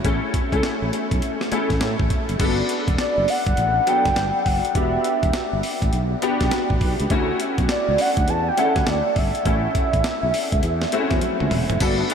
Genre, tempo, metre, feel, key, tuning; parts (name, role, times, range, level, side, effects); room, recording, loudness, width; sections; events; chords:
R&B, new jack swing; 102 BPM; 4/4; swing 63% on 16ths; A4 = 440 Hz
clear baby grand piano; accompaniment; 0.0-12.1 s; F#3 to A4; -24 LUFS; left 2 dB; analog chorus
sustaining fretless electric bass; bass; 0.0-12.0 s; E1 to A2; -24 LUFS; equal; wide subtle chorus
breakbeat sampler-style drum kit; drums; 0.0-12.1 s; crash cymbal, hi-hat, kick drum, snare drum, tambourine, toms; -24 LUFS; equal
warm velvety synth lead; melody; 3.0-11.5 s; D5 to A5; -23 LUFS; right 1 dB; chorus, analog delay
wet huge ambient reverb, RT60 7.7 s; dreamy mix soaked in reverb; -18 LUFS; side -7 dB against mid
0.0-2.4 A section; 2.4-11.8 B section
drum fill 11.2-11.8
0.0 A; 2.4 Gmaj7; 4.8 Em7; 7.1 Dmaj7; 9.5 A